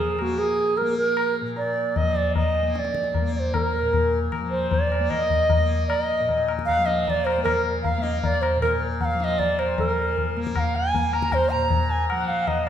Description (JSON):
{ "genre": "indian classical, Hindustani", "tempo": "154 BPM", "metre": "4/4", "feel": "straight", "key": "Bb major", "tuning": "A4 = 441 Hz", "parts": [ { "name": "bright reedy bass bansuri", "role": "melody", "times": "0.0-12.7 s", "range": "Gb4 to Bb5", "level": "-23 LUFS", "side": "right 2 dB", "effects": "none" }, { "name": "tanpura", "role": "drone", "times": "0.0-12.7 s", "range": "Bb2 to Bb3", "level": "-31 LUFS", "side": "left 3 dB", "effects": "none" }, { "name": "tabla", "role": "percussion", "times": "0.2-12.7 s", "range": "none", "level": "-26 LUFS", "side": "left 3 dB", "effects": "none" }, { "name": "hand-pumped harmonium", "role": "second line", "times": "3.6-12.7 s", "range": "Bb4 to Bb5", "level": "-30 LUFS", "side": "left 4 dB", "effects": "none" } ], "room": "wet recital hall reverb, RT60 1.7 s", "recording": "none", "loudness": "-20 LUFS", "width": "side -9 dB against mid", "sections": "0.0-9.8 A section; 9.8-12.7 B section", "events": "speeding up 0.0-12.7", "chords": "none" }